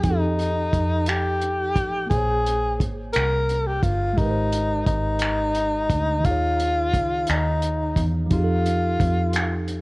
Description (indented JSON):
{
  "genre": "slow six-eight R&B",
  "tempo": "58 BPM (dotted quarters)",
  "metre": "6/8",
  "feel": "straight",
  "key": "unclear",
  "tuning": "A4 = 439 Hz",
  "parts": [
    { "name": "breathy tenor saxophone", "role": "melody", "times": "0.0-9.7 s", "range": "Eb4 to Bb4", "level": "-24 LUFS", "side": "left 1 dB", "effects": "none" },
    { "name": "tine electric piano", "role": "accompaniment", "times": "0.0-9.8 s", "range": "Eb3 to Db5", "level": "-30 LUFS", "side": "right 1 dB", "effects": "medium stereo tremolo" },
    { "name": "vintage muted fingered electric bass", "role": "bass", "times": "0.0-9.8 s", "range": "G1 to F2", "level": "-25 LUFS", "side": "equal", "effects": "none" },
    { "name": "cloth-damped thuddy drum kit", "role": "drums", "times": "0.0-9.8 s", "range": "finger snaps, hi-hat, kick drum", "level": "-25 LUFS", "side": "equal", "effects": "none" }
  ],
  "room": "small room ambience",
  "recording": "worn, warbling old tape, cassette tape, warbly pitch drift",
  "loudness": "-20 LUFS",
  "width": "side -23 dB against mid",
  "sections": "0.0-9.8 A section",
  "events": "none",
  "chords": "0.0 F9; 2.1 Bbm9; 4.2 Abmaj9; 6.2 Eb7sus4; 8.3 F9"
}